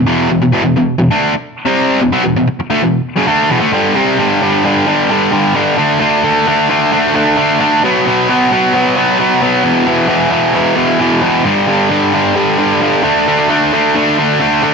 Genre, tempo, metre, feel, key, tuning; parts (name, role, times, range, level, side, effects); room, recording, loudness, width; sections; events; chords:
rock; 132 BPM; 4/4; straight; E minor; A4 = 444 Hz
overdriven electric guitar; solo; 0.0-14.7 s; E2 to D4; -10 LUFS; equal
light reverb; nothing above 7.7 kHz; -10 LUFS; side -5 dB against mid
0.0-4.2 A section; 4.2-14.7 B section
0.0 Em; 4.2 G5; 5.8 D5; 7.8 B5; 9.6 E5; 11.5 G5; 13.1 D5